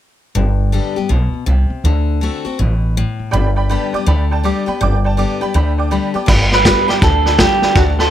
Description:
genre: rockabilly.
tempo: 162 BPM.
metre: 4/4.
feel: swing 64% on 8ths.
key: G major.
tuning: A4 = 440 Hz.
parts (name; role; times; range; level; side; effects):
picked steel-string acoustic guitar; accompaniment; 0.3-8.1 s; G2 to G4; -21 LUFS; left 7 dB; none.
upright bass; bass; 0.4-8.1 s; G1 to D2; -15 LUFS; equal; none.
honky-tonk upright piano; accompaniment; 3.3-8.1 s; D5 to D6; -22 LUFS; right 5 dB; none.
vintage drum kit; drums; 6.3-8.0 s; crash cymbal, hi-hat, kick drum, snare drum; -14 LUFS; equal; none.
electric guitar through a small old amp; melody; 6.5-8.1 s; F#4 to B4; -14 LUFS; right 3 dB; spring reverb, tape echo.
room: little or no reverb.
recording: none.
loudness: -13 LUFS.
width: side -11 dB against mid.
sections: 0.4-6.3 A section; 6.3-8.1 B section.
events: none.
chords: 0.4 G; 1.8 D7; 3.3 G.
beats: | 0.36 0.73 1.10 1.48 | 1.85 2.22 2.59 2.96 | 3.33 3.70 4.07 4.44 | 4.81 5.18 5.55 5.92 | 6.29 6.66 7.03 7.39 | 7.76.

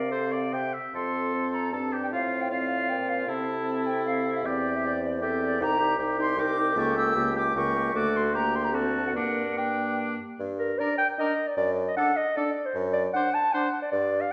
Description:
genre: quick classical-period movement for wind quintet.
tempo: 154 BPM.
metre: 3/4.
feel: rubato.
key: F major, G minor from 5.6 s.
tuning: A4 = 440 Hz.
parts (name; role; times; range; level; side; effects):
silver concert flute; melody; 0.0-13.6 s; D5 to E6; -33 LUFS; equal; none.
clear oboe; second line; 0.0-13.7 s; D4 to G5; -33 LUFS; equal; none.
dark clarinet; accompaniment; 0.0-14.3 s; G4 to A5; -32 LUFS; equal; none.
mellow French horn; accompaniment; 0.0-13.7 s; A3 to Eb4; -35 LUFS; equal; none.
clear bassoon; bass; 0.0-14.2 s; C2 to C3; -34 LUFS; equal; none.
room: wet recital hall reverb, RT60 1.5 s.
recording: recorded in a church or concert hall.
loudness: -27 LUFS.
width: mono.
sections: 0.9-10.4 A section; 10.4-14.3 B section.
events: none.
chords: 0.0 F/C; 0.5 C; 0.9 F; 2.1 F/A; 3.3 C; 4.4 C/E; 5.6 Cm7; 6.8 C#dim7; 7.9 D; 8.3 Gm/D; 8.7 D7; 9.2 Gm; 11.6 D/F#; 12.8 D7/F#.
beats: 0.12 0.54 | 0.95 1.35 1.74 | 2.13 2.52 2.90 | 3.29 3.67 4.06 | 4.45 4.83 5.22 | 5.60 5.99 6.38 | 6.77 7.16 7.55 | 7.94 8.33 8.74 | 9.15 9.57 9.99 | 10.40 10.80 11.19 | 11.58 11.98 12.37 | 12.76 13.15 13.54 | 13.93 14.31.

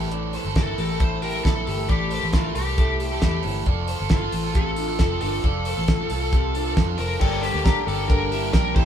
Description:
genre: jangly indie pop.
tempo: 135 BPM.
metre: 4/4.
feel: straight.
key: G dorian.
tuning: A4 = 440 Hz.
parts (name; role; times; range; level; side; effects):
overdriven semi-hollow guitar; accompaniment; 0.0-8.8 s; G2 to A4; -29 LUFS; right 8 dB; none.
electric guitar through a small old amp; arpeggios; 0.0-8.8 s; C4 to D5; -31 LUFS; left 1 dB; none.
vintage muted fingered electric bass; bass; 0.0-8.8 s; F1 to F2; -27 LUFS; left 1 dB; none.
cloth-damped thuddy drum kit; drums; 0.1-8.8 s; crash cymbal, hi-hat, kick drum, ride cymbal, snare drum; -23 LUFS; equal; none.
high-gain lead guitar; melody; 0.6-8.8 s; F4 to C5; -28 LUFS; left 5 dB; distortion.
glockenspiel with hard plastic mallets; second line; 7.2-8.8 s; G5 to Bb5; -31 LUFS; left 8 dB; none.
warm upright piano; accompaniment; 7.2-8.8 s; Bb3 to Bb4; -31 LUFS; right 3 dB; none.
room: light reverb.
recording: band playing live in one room.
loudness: -20 LUFS.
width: side -9 dB against mid.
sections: 0.0-7.2 A section; 7.2-8.8 B section.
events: none.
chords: 0.0 Am; 3.7 F; 7.2 Gm.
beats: | 0.12 0.56 1.00 1.45 | 1.89 2.34 2.78 3.23 | 3.67 4.11 4.55 5.00 | 5.44 5.88 6.33 6.77 | 7.21 7.66 8.10 8.54.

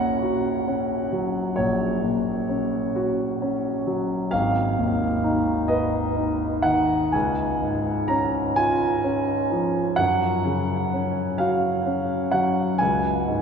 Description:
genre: classical, romantic nocturne for solo piano.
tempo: 43 BPM (dotted quarters).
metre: 12/8.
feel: rubato.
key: F# major.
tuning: A4 = 440 Hz.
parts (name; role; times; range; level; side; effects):
warm concert grand piano; solo; 0.0-13.4 s; G#1 to A#5; -21 LUFS; equal; none.
room: wet cathedral reverb, RT60 7.1 s.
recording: recorded in a church or concert hall.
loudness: -21 LUFS.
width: side -6 dB against mid.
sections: 0.0-13.4 A section.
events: none.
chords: 0.0 F#/A#; 4.3 G#m; 7.1 C#; 10.0 F#5; 12.8 C#5.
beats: 0.21 1.57 2.95 | 4.32 5.70 7.14 8.58 | 9.99 11.39 12.80.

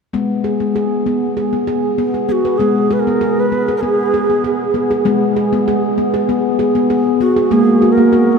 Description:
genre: world meditative.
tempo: 98 BPM.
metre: 4/4.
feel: straight.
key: G# minor.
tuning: A4 = 440 Hz.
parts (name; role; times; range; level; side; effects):
handpan; arpeggios; 0.1-8.4 s; G#3 to B4; -13 LUFS; equal; none.
mellow Native American-style cedar flute; melody; 2.3-8.4 s; F#4 to B4; -19 LUFS; right 1 dB; ping-pong delay.
room: wet huge ambient reverb, RT60 8.5 s.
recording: dreamy mix soaked in reverb.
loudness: -13 LUFS.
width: side -5 dB against mid.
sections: 0.1-2.6 A section; 2.6-8.4 B section.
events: none.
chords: 0.1 G#m; 7.5 F#add9/G#.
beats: | 0.14 0.75 1.37 1.98 | 2.60 3.21 3.83 4.44 | 5.05 5.67 6.28 6.89 | 7.51 8.12.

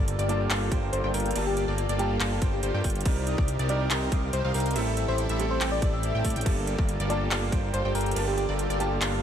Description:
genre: future bass.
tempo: 141 BPM.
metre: 4/4.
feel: half-time.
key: G minor.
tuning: A4 = 442 Hz.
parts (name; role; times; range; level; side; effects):
clear concert grand piano; accompaniment; 0.0-9.2 s; G3 to D6; -34 LUFS; right 5 dB; sidechain pumping, ping-pong delay.
concert harp; arpeggios; 0.0-9.2 s; E4 to G5; -40 LUFS; left 1 dB; none.
wide unison pluck; arpeggios; 0.0-9.2 s; C5 to G5; -39 LUFS; equal; sidechain pumping, ping-pong delay.
soft supersaw; riff; 0.0-9.2 s; Bb3 to G5; -32 LUFS; right 1 dB; sidechain pumping.
fat analog bass; bass; 0.0-9.2 s; G1 to A2; -29 LUFS; equal; tube saturation, sidechain pumping.
trap drum kit; drums; 0.1-9.1 s; crash cymbal, handclaps, hi-hat; -33 LUFS; right 1 dB; overdrive.
soft struck synth lead; melody; 0.3-8.9 s; G4 to E5; -33 LUFS; left 2 dB; chorus, sidechain pumping, ping-pong delay.
electronic kick drum; drums; 0.7-7.6 s; none; -26 LUFS; equal; overdrive.
room: little or no reverb.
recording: none.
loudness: -24 LUFS.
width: side -9 dB against mid.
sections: 0.0-9.2 A section.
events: none.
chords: 0.0 Gm9; 3.1 Cm9; 4.8 Am7; 6.5 Gm9.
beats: 0.08 0.50 0.93 | 1.35 1.78 2.21 2.63 | 3.06 3.48 3.91 4.33 | 4.76 5.18 5.61 6.04 | 6.46 6.89 7.31 7.74 | 8.16 8.59 9.02.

